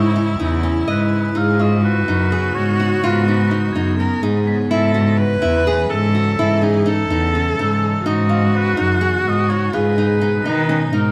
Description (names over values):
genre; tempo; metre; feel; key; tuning
contemporary instrumental, chamber music in an uneven meter; 251 BPM (eighths); 7/8; straight; unclear; A4 = 439 Hz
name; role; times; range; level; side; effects
warm oboe; melody; 0.0-3.8, 7.6-11.1 s; A4 to F#5; -26 LUFS; equal; none
clear viola; second line; 0.0-11.1 s; D#4 to B4; -24 LUFS; equal; none
icy glass pad; sustained chords; 0.0-11.1 s; B2 to E4; -28 LUFS; equal; chorus, built-in reverb
nylon-string guitar; arpeggios; 0.0-11.1 s; C#4 to E#5; -26 LUFS; equal; none
clear cello; bass; 0.0-11.1 s; E2 to D#3; -20 LUFS; equal; none
crotales; texture; 0.0-7.3 s; C#6 to B6; -37 LUFS; equal; none
room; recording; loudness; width
moderate studio reverb, RT60 0.7 s; dark, warm production; -17 LUFS; mono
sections
0.0-11.1 A section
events
none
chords
0.0 Emaj13; 1.4 Badd9; 4.7 A; 8.1 Badd9; 9.7 G#m